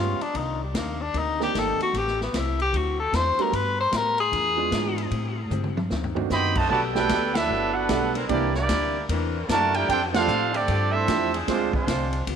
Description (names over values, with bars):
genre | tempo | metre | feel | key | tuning
jazz, big band swing | 151 BPM | 4/4 | swing 64% on 8ths | G major | A4 = 441 Hz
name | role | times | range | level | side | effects
clear tenor saxophone | melody | 0.0-5.1 s | G3 to C5 | -25 LUFS | left 3 dB | tape echo
archtop guitar, miked and amplified | accompaniment | 0.0-12.4 s | A2 to B4 | -34 LUFS | left 14 dB | none
clear concert grand piano | accompaniment | 0.0-11.7 s | Eb3 to A4 | -30 LUFS | right 12 dB | none
upright bass | bass | 0.0-12.4 s | G1 to A2 | -29 LUFS | equal | none
vintage drum kit | drums | 0.2-12.4 s | crash cymbal, hi-hat, kick drum, ride cymbal, snare drum, toms | -31 LUFS | equal | none
clear trumpet section | melody | 6.3-12.2 s | Ab3 to B5 | -24 LUFS | right 3 dB | none
clear trombone section | second line | 6.3-12.2 s | C3 to G4 | -31 LUFS | right 10 dB | none
warm saxophone section | sustained chords | 6.7-11.8 s | E3 to Bb4 | -34 LUFS | left 2 dB | none
room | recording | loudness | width
light reverb | 1960s-style stereo with parts hard left and right | -22 LUFS | side -7 dB against mid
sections
0.0-6.7 A section; 6.7-12.4 B section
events
tenor saxophone solo 0.0-6.7; drum fill 5.5-6.3; band accent 7.3, 10.1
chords
0.3 Cm9; 1.9 Am9; 2.7 D9; 3.5 Gmaj9; 4.3 E7b9; 5.1 Am7; 5.9 D7b9; 6.7 Gmaj9; 8.3 C9; 9.9 F69; 11.5 Dm7b5